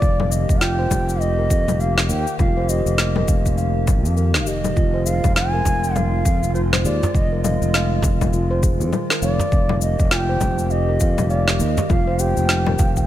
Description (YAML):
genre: organic downtempo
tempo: 101 BPM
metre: 4/4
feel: swing 60% on 16ths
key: unclear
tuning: A4 = 435 Hz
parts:
  - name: mellow bansuri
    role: melody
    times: 0.0-13.1 s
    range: C5 to Ab5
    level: -25 LUFS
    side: equal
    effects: ping-pong delay
  - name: warbly tape-like pad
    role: sustained chords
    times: 0.0-13.1 s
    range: Eb3 to G4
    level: -29 LUFS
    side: left 2 dB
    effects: chorus, built-in reverb, sidechain pumping
  - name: steel tongue drum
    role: arpeggios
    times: 0.0-13.0 s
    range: Eb4 to F5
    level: -27 LUFS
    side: right 1 dB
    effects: ping-pong delay
  - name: sustaining fretless electric bass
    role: bass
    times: 0.0-13.1 s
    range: F1 to F2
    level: -21 LUFS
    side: equal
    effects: sidechain pumping
  - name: electronic cabasa, congas and snare drum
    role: drums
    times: 0.0-13.1 s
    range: none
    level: -23 LUFS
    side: left 3 dB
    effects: none
  - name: electronic kick drum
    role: drums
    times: 0.0-13.1 s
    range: none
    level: -19 LUFS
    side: equal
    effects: none
  - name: frame drum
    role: percussion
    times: 5.7-12.9 s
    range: none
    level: -25 LUFS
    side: right 1 dB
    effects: none
room: small room ambience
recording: none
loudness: -16 LUFS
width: side -13 dB against mid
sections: 0.0-13.1 A section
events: none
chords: 0.0 Eb/F; 4.8 Fm7; 9.5 Eb/F